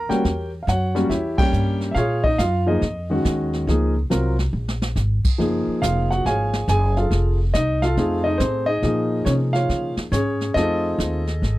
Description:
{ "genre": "jazz piano trio", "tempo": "140 BPM", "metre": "4/4", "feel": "swing 65% on 8ths", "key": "Bb minor", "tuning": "A4 = 440 Hz", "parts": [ { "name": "warm grand piano", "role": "melody", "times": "0.0-11.6 s", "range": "Eb3 to Ab5", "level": "-21 LUFS", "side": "equal", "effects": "none" }, { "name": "upright bass", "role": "bass", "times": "0.0-11.6 s", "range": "F1 to Db3", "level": "-22 LUFS", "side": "equal", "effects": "none" }, { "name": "jazz brush drum kit", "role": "drums", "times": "0.1-11.6 s", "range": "brushed snare drum, crash cymbal, hi-hat, kick drum, ride cymbal, snare drum", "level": "-24 LUFS", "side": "equal", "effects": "none" } ], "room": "little or no reverb", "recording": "dry, close 1970s-style studio recording", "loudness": "-18 LUFS", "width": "side -17 dB against mid", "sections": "0.0-11.6 A section", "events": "band accent 1.3; drum fill 4.5-5.0", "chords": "0.2 Edim7; 2.0 Bbm7; 5.4 Gbmaj7; 7.1 F7#9; 8.8 Bbm7; 10.5 F7#9", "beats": "| 0.24 0.67 1.10 1.53 | 1.96 2.39 2.82 3.25 | 3.67 4.10 4.53 4.96 | 5.39 5.82 6.25 6.68 | 7.11 7.54 7.97 8.40 | 8.83 9.26 9.69 10.12 | 10.55 10.98 11.41" }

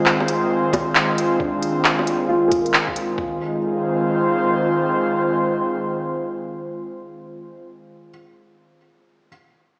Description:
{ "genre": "future garage", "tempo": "134 BPM", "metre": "4/4", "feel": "swing 64% on 16ths", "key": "F dorian", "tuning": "A4 = 438 Hz", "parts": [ { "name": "felt-muted upright piano", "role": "accompaniment", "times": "0.0-9.3 s", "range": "C4 to Bb4", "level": "-28 LUFS", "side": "equal", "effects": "sidechain pumping, low-pass filter, tape echo" }, { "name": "airy breathy pad", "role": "sustained chords", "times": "0.0-7.5 s", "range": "Eb3 to C5", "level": "-23 LUFS", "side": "equal", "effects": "chorus, vintage 12-bit sampler grit, sidechain pumping" }, { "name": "organic electronic drum kit", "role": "drums", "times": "0.1-3.1 s", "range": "bongos, handclaps, hi-hat", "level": "-21 LUFS", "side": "equal", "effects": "studio reverb" }, { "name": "lo-fi sampler-style drum kit", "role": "drums", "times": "0.7-3.3 s", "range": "kick drum, toms", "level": "-35 LUFS", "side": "equal", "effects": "studio reverb" } ], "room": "wet digital room reverb, RT60 1.2 s, digital ambience", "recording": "played on a big sound system in a bare room, stone room reverb, small speaker sound", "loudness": "-20 LUFS", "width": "mono", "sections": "0.0-3.2 A section; 3.2-6.8 B section", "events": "filter sweep on felt piano 0.0-3.2", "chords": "0.0 Fm7", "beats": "0.05 0.50 0.95 | 1.40 1.84 2.29 2.74 | 3.19 3.64 4.08 4.53 | 4.98 5.43 5.87 6.32" }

